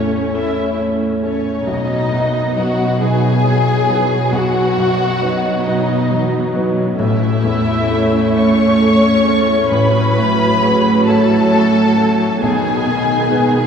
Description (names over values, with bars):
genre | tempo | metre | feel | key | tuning
cinematic | 45 BPM (dotted quarters) | 6/8 | rubato | unclear | A4 = 442 Hz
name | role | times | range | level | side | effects
muted symphonic violin section | melody | 0.0-13.7 s | C#5 to C#6 | -21 LUFS | left 2 dB | none
muted symphonic violin section | second line | 0.0-13.7 s | C#4 to C#5 | -20 LUFS | left 1 dB | none
muted symphonic viola section | accompaniment | 0.0-13.7 s | D#3 to C#4 | -20 LUFS | equal | none
warm baby grand piano | accompaniment | 0.0-13.7 s | A1 to C#5 | -19 LUFS | right 1 dB | none
concert harp | arpeggios | 0.0-13.7 s | A2 to D#5 | -24 LUFS | left 4 dB | none
muted symphonic cello section | bass | 0.0-13.7 s | A2 to B2 | -19 LUFS | right 1 dB | none
room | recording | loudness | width
wet church reverb, RT60 2.9 s | recorded in a church or concert hall, nothing above 10.5 kHz | -13 LUFS | side -7 dB against mid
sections
0.0-13.7 A section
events
none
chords
0.0 A; 1.7 B; 7.0 A; 9.7 F#madd9/A; 12.4 G#m/B